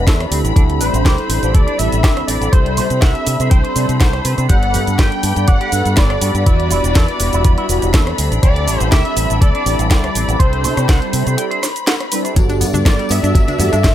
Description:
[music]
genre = nu-disco, nu disco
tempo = 122 BPM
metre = 4/4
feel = swing 54% on 16ths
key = G major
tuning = A4 = 435 Hz
[part]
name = wide unison lead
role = melody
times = 0.0-13.9 s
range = C5 to G5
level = -22 LUFS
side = equal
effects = lush chorus, tape echo
[part]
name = mellow synth brass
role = accompaniment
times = 0.0-13.9 s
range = G3 to F#5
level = -21 LUFS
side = right 1 dB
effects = chorus, phaser, sidechain pumping, slapback echo
[part]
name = rich studio string section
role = sustained chords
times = 0.0-13.9 s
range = D5 to B5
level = -27 LUFS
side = left 7 dB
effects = sidechain pumping
[part]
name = fingered electric bass with an envelope filter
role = bass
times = 0.0-13.9 s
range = E1 to C3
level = -18 LUFS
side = equal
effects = none
[part]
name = electric guitar with an envelope filter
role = riff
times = 0.1-12.3 s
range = C4 to G5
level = -26 LUFS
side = right 4 dB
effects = lush chorus, slapback echo
[part]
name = electronic kick drum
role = drums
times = 0.1-13.9 s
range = none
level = -12 LUFS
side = equal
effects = none
[part]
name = house drum kit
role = drums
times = 0.1-13.9 s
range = hi-hat, rim click, shaker, snare drum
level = -21 LUFS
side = right 1 dB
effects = none
[part]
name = analog pluck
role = arpeggios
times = 12.4-13.9 s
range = F#3 to D4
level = -23 LUFS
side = left 2 dB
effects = chorus, sidechain pumping, tape echo
[part]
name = tambourine, bongos and congas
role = percussion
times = 12.4-13.9 s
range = none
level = -26 LUFS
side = left 2 dB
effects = none
[sound]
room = little or no reverb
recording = none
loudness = -12 LUFS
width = side -12 dB against mid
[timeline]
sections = 0.0-13.9 A section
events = break 11.4-12.4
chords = 0.3 D7sus4; 2.5 C6; 4.5 Gmaj7; 6.5 Em7; 8.2 D7sus4; 10.4 C6; 12.4 Gmaj7

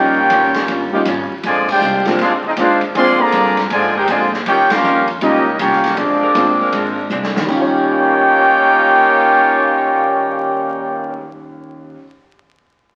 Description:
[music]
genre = jazz, big band swing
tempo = 159 BPM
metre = 4/4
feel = swing 65% on 8ths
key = Eb major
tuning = A4 = 440 Hz
[part]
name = clear trumpet section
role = melody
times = 0.0-11.3 s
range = C4 to C6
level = -17 LUFS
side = equal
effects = none
[part]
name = bright trombone section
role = second line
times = 0.0-11.3 s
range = D3 to G4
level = -20 LUFS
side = equal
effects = none
[part]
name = archtop guitar, miked and amplified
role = accompaniment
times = 0.0-12.0 s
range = Bb2 to G4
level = -27 LUFS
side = equal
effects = none
[part]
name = warm concert grand piano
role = accompaniment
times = 0.0-12.1 s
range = Eb2 to Db5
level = -24 LUFS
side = equal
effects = none
[part]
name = upright bass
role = bass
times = 0.0-12.0 s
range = G1 to Bb2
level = -32 LUFS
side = equal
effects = none
[part]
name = swinging big-band drum kit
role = drums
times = 0.3-10.4 s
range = crash cymbal, cymbal swell, hi-hat, kick drum, ride cymbal, snare drum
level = -28 LUFS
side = equal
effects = none
[part]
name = bright saxophone section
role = sustained chords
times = 0.9-11.3 s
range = F3 to Db5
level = -30 LUFS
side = equal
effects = none
[sound]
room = wet large studio reverb, RT60 1.2 s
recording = very old 78 rpm record, vinyl crackle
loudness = -14 LUFS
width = mono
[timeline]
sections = 0.0-7.5 A section; 7.5-10.5 B section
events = band accent 1.6, 4.7; drum fill 7.1-7.5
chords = 0.0 Eb9; 1.4 Bb9; 4.5 Eb9; 6.0 Bb9; 7.5 Eb9

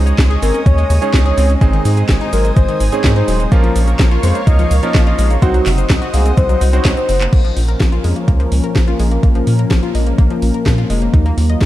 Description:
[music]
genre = italo disco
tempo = 126 BPM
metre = 4/4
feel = straight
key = Bb minor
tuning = A4 = 439 Hz
[part]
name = warm analog pad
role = sustained chords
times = 0.0-11.7 s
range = Eb3 to Eb6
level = -23 LUFS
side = equal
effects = chorus
[part]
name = clear electric grand piano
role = stabs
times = 0.0-7.3 s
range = F3 to C5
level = -23 LUFS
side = right 4 dB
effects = ping-pong delay
[part]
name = round analog bass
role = bass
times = 0.0-11.7 s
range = Eb1 to Bb2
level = -14 LUFS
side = equal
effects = none
[part]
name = analog pluck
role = arpeggios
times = 0.1-11.7 s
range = Ab2 to Eb5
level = -23 LUFS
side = left 5 dB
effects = chorus, cassette tape, ping-pong delay
[part]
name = house drum kit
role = drums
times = 0.1-11.7 s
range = cabasa, crash cymbal, handclaps, hi-hat, snare drum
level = -23 LUFS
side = equal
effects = small room reverb
[part]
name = electronic kick drum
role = drums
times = 0.2-11.7 s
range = none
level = -13 LUFS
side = equal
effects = overdrive, small room reverb
[part]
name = soft octave-layered synth lead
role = melody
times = 0.4-7.2 s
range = Gb4 to Eb5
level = -21 LUFS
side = left 1 dB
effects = chorus, ping-pong delay
[sound]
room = light reverb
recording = dark, warm production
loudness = -11 LUFS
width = side -14 dB against mid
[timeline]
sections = 0.0-7.3 A section; 7.3-11.7 B section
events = drum fill 6.9-7.3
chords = 0.0 Dbsus2; 1.6 Ab; 3.5 Bbm; 5.4 Cdim; 7.3 Bbm; 11.1 Ebmadd9

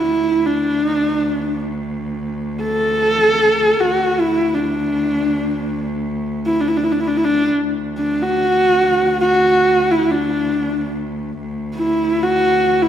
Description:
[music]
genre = mongolian traditional, Mongolian folk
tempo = free time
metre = none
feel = none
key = D gong mode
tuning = A4 = 439 Hz
[part]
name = warm horsehead fiddle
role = melody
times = 0.0-12.9 s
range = D4 to A4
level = -15 LUFS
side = equal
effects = none
[part]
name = rich cello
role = drone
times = 0.0-12.9 s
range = D2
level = -25 LUFS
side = right 1 dB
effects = none
[sound]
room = wet scoring stage reverb, RT60 2.0 s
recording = none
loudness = -15 LUFS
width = side -10 dB against mid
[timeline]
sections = 0.0-7.6 A section; 7.6-12.9 A section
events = none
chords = none

